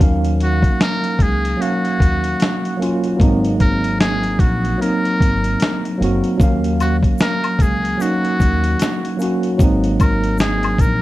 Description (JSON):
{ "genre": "lo-fi hip hop", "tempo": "75 BPM", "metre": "4/4", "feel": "swing 58% on 16ths", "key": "Eb dorian", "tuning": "A4 = 438 Hz", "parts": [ { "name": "tine electric piano", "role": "accompaniment", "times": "0.0-11.0 s", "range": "Gb3 to F5", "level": "-19 LUFS", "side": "right 1 dB", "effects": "medium stereo tremolo, low-pass filter" }, { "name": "upright bass", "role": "bass", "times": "0.0-11.0 s", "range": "Gb1 to Eb2", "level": "-20 LUFS", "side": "equal", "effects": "none" }, { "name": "dusty soul sampler-style drum kit", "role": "drums", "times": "0.0-11.0 s", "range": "hi-hat, kick drum, snare drum", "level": "-17 LUFS", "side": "equal", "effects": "none" }, { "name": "trumpet with metal mute", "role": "melody", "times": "0.4-11.0 s", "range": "Gb4 to Bb4", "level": "-23 LUFS", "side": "left 1 dB", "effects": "low-pass filter, analog delay, plate reverb" }, { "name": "egg shaker and woodblock", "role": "percussion", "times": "6.4-11.0 s", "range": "none", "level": "-28 LUFS", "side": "left 7 dB", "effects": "none" } ], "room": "moderate studio ambience, RT60 0.5 s", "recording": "dark, warm production", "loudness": "-14 LUFS", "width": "side -16 dB against mid", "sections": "0.0-11.0 A section", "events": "none", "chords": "0.0 Ebm9; 3.2 Ab9; 6.4 Ebm9; 9.6 Ab9" }